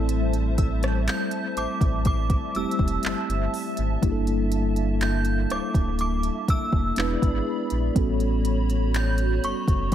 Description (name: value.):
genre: contemporary R&B.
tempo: 61 BPM.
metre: 4/4.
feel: straight.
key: unclear.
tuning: A4 = 438 Hz.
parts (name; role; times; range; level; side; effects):
mellow tine electric piano; accompaniment; 0.0-9.9 s; G3 to B4; -28 LUFS; left 1 dB; medium stereo tremolo.
hollow soft pad; sustained chords; 0.0-9.9 s; G3 to B5; -32 LUFS; equal; ensemble chorus.
sub bass with octave; bass; 0.0-9.9 s; D1 to Bb1; -25 LUFS; equal; none.
smooth R&B drum kit; drums; 0.1-9.9 s; handclaps, hi-hat, kick drum, rim click; -26 LUFS; equal; none.
glassy wavetable pluck; texture; 0.6-4.7 s; E6 to G6; -40 LUFS; right 2 dB; chorus, analog delay.
synth chime; melody; 1.1-9.9 s; C#6 to G6; -31 LUFS; right 2 dB; ensemble chorus, analog delay.
room: light reverb, digital ambience.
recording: echo-heavy mix.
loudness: -22 LUFS.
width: side -10 dB against mid.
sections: 0.0-9.9 A section.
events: none.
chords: 0.0 Am7; 4.0 Gm69; 7.0 E7; 8.0 A13.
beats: | 0.09 1.07 2.06 3.04 | 4.02 5.01 5.99 6.97 | 7.96 8.94 9.93.